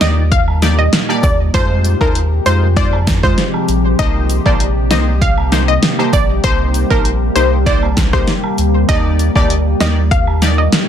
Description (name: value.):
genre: dancehall.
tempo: 98 BPM.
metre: 4/4.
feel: straight.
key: C minor.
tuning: A4 = 439 Hz.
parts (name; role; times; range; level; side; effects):
analog pluck; melody; 0.0-10.7 s; Bb4 to F5; -19 LUFS; equal; chorus, tape echo.
synth brass stab; accompaniment; 0.0-10.6 s; Ab3 to D5; -20 LUFS; left 1 dB; chorus.
deep dark ambient pad; sustained chords; 0.0-10.9 s; Bb2 to G4; -20 LUFS; left 1 dB; chorus, built-in reverb, sidechain pumping.
warm sub bass; bass; 0.0-10.7 s; Bb1 to F2; -15 LUFS; equal; none.
deep house drum kit; drums; 0.0-10.9 s; hi-hat, kick drum, rim click, snare drum; -16 LUFS; equal; vintage 12-bit sampler grit, soft clipping on snare.
cabasa and woodblock; percussion; 0.0-10.6 s; none; -28 LUFS; right 6 dB; none.
room: little or no reverb.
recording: dense, heavily limited modern master.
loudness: -11 LUFS.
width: side -9 dB against mid.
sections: 0.0-10.9 A section.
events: none.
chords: 0.0 Ebmaj7; 1.5 Fm7; 4.0 Cm7; 8.9 Ebmaj7.